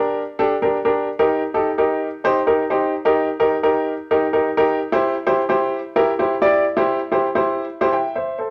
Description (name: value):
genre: soul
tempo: 129 BPM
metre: 4/4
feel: straight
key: unclear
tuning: A4 = 442 Hz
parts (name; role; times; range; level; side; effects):
- clear concert grand piano; solo; 0.0-8.5 s; D4 to G5; -19 LUFS; equal; none
room: moderate studio reverb, RT60 0.9 s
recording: none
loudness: -19 LUFS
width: mono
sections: 0.0-8.5 A section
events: none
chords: 0.0 Gm; 1.2 Eb; 4.9 C